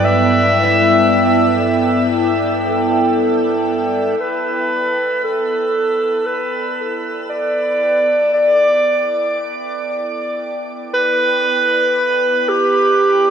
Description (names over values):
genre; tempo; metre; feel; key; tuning
ambient; 58 BPM; 4/4; straight; G major; A4 = 443 Hz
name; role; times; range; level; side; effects
warm clarinet; melody; 0.0-13.3 s; G4 to E5; -15 LUFS; equal; diffuse ambient delay
evolving wavetable pad; sustained chords; 0.0-13.3 s; G2 to G5; -19 LUFS; equal; chorus, built-in reverb, phaser
concert harp; arpeggios; 0.0-5.2 s; F#3 to E5; -29 LUFS; left 1 dB; none
room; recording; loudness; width
wet shimmer reverb, RT60 8.1 s; dark, warm production; -14 LUFS; side -8 dB against mid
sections
0.0-4.2 A section; 4.2-13.3 B section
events
fade-in on ambient pad 4.2-13.3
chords
0.0 Em7/G; 4.2 G6